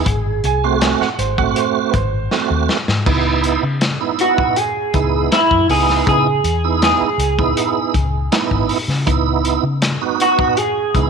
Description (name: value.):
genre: straight-eighth soul blues.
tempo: 80 BPM.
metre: 4/4.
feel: straight.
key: C# minor.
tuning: A4 = 440 Hz.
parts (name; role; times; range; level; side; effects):
electric guitar through a small old amp; melody; 0.0-11.1 s; E4 to G#4; -17 LUFS; right 1 dB; analog chorus.
tonewheel organ; accompaniment; 0.0-11.1 s; A3 to F#4; -20 LUFS; right 11 dB; slow rotary speaker, chorus vibrato.
vintage muted fingered electric bass; bass; 0.1-11.1 s; G#1 to C#3; -19 LUFS; left 2 dB; none.
crunchy breakbeat drum kit; drums; 0.1-11.1 s; crash cymbal, hi-hat, kick drum, snare drum; -21 LUFS; left 2 dB; none.
clear upright piano; second line; 0.5-2.7 s; B4 to B#5; -23 LUFS; right 11 dB; none.
room: light reverb, small room ambience.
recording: 1960s-style stereo.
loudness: -14 LUFS.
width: side -6 dB against mid.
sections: 0.0-3.1 A section; 3.1-11.1 B section.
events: drum fill 2.3-3.1; clean electric guitar solo 3.1-11.1.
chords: 0.1 G#7b9; 3.1 C#m7.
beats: | 0.06 0.81 1.56 2.31 | 3.06 3.81 4.57 5.32 | 6.07 6.82 7.57 8.32 | 9.07 9.82 10.57.